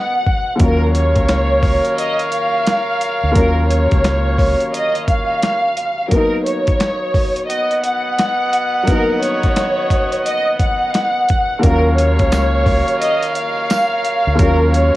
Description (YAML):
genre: hip hop, boom-bap hip-hop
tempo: 87 BPM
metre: 4/4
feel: swing 63% on 16ths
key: Eb minor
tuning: A4 = 440 Hz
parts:
  - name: warm symphonic violin section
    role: melody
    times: 0.0-15.0 s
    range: Bb4 to Gb5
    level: -18 LUFS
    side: equal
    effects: high-pass filter, low-pass filter, cassette tape, tape echo
  - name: warm upright piano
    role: accompaniment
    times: 0.0-15.0 s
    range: Eb2 to F4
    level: -23 LUFS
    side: left 2 dB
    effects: high-pass filter, low-pass filter, cassette tape
  - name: bright trumpet section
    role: stabs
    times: 0.0-15.0 s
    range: Cb4 to Gb5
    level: -22 LUFS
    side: right 1 dB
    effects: high-pass filter, low-pass filter, cassette tape, tape echo
  - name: dusty soul sampler-style drum kit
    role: drums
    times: 0.3-14.9 s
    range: hi-hat, kick drum, snare drum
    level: -18 LUFS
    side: equal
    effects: overdrive, cassette tape
  - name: deep dub fingered electric bass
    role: bass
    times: 0.6-4.5, 11.6-14.9 s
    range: Db2 to Eb2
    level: -16 LUFS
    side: equal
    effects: none
  - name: tambourine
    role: percussion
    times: 12.3-13.9 s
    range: none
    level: -33 LUFS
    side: left 4 dB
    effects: none
room: small room ambience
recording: home recording on cassette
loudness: -13 LUFS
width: side -16 dB against mid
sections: 0.0-11.6 A section; 11.6-15.0 B section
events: break 0.0-0.6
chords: 0.0 Abm9 (rootless); 0.6 Ebm9; 6.1 Bmaj9/F#; 11.6 Ebm9